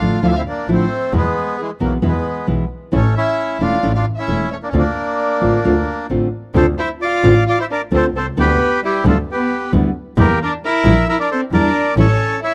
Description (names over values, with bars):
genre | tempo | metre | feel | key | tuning
tango | 133 BPM | 4/4 | rubato | D minor | A4 = 440 Hz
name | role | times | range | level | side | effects
bandoneon | melody | 0.0-12.5 s | E3 to F5 | -22 LUFS | equal | none
warm chamber violin section | second line | 0.0-12.5 s | G3 to F5 | -25 LUFS | equal | none
nylon-string guitar | accompaniment | 0.0-12.1 s | B2 to F4 | -19 LUFS | equal | none
clear double bass | bass | 0.0-12.1 s | E1 to E2 | -21 LUFS | equal | none
room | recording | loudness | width
small room ambience | dry, close 1970s-style studio recording | -17 LUFS | mono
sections
0.0-6.6 A section; 6.6-12.5 A section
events
none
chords
0.0 Dmadd9; 1.1 E; 2.9 A; 4.7 Dm7; 8.4 G6/D; 10.2 Edim; 12.0 A7